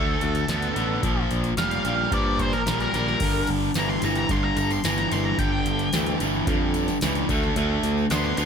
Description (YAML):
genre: classic rock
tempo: 110 BPM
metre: 4/4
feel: straight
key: G minor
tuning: A4 = 440 Hz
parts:
  - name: octave-fuzz lead guitar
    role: melody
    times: 0.0-8.5 s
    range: A4 to C6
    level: -28 LUFS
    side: equal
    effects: wah, distortion, slapback echo
  - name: cranked stack guitar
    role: riff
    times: 0.0-8.5 s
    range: G2 to B3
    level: -27 LUFS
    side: left 9 dB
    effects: overdrive
  - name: distorted electric guitar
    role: riff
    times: 0.0-8.5 s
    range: G2 to B3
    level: -27 LUFS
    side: right 10 dB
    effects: distortion
  - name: modern bright picked electric bass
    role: bass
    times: 0.0-8.5 s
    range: F1 to G2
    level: -28 LUFS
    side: equal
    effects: none
  - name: booming analog drum machine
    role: drums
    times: 0.2-8.5 s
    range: crash cymbal, hi-hat, kick drum, snare drum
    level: -29 LUFS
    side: equal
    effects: none
  - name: tambourine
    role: percussion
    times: 3.6-8.5 s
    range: none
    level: -40 LUFS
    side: left 5 dB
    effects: none
room: little or no reverb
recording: none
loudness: -21 LUFS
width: side -7 dB against mid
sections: 0.0-8.5 A section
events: lead electric guitar solo 0.0-8.5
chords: 0.0 D5; 1.0 Bb5; 3.2 G5; 7.3 D5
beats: 0.49 | 1.04 1.58 2.12 2.67 | 3.21 3.76 4.30 4.85 | 5.39 5.93 6.48 7.02 | 7.57 8.11